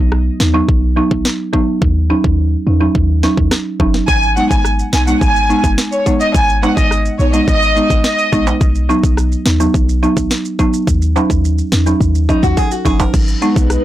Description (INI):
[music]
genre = dancehall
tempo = 106 BPM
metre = 4/4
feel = straight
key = G# minor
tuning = A4 = 442 Hz
[part]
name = clean 808-style bass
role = bass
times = 0.0-13.8 s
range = F#1 to E2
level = -15 LUFS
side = equal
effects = none
[part]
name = island pop drum kit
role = drums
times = 0.1-13.8 s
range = crash cymbal, hi-hat, kick drum, rim click, snare drum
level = -16 LUFS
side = equal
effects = overdrive
[part]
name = folk marimba with medium mallets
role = accompaniment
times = 0.4-13.5 s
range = F#3 to F#5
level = -17 LUFS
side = right 1 dB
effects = none
[part]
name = warm symphonic violin section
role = melody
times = 4.1-8.4 s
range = C#5 to G#5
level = -16 LUFS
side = equal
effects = analog delay
[part]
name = maracas and timbales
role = percussion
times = 4.1-13.8 s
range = none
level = -26 LUFS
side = right 6 dB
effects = none
[part]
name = nylon-string guitar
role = arpeggios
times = 12.3-13.3 s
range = D#4 to A#4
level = -20 LUFS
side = left 3 dB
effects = none
[part]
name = glassy FM pad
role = sustained chords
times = 13.4-13.8 s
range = G#3 to B4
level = -22 LUFS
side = left 1 dB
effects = ensemble chorus, built-in reverb, phaser, tremolo, sidechain pumping
[sound]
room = little or no reverb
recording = blown-out, overdriven recording, overdrive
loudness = -11 LUFS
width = side -13 dB against mid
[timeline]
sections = 0.0-13.1 A section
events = break 0.0-4.1; drum fill 12.0-13.1; marimba fill 12.0-13.1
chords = 0.0 B; 1.8 D#m7; 4.1 G#m; 8.6 B; 10.9 D#m7; 13.1 G#m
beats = 0.12 0.69 1.25 | 1.82 2.38 2.95 3.52 | 4.08 4.65 5.21 5.78 | 6.35 6.91 7.48 8.04 | 8.61 9.18 9.74 10.31 | 10.88 11.44 12.01 12.57 | 13.14 13.71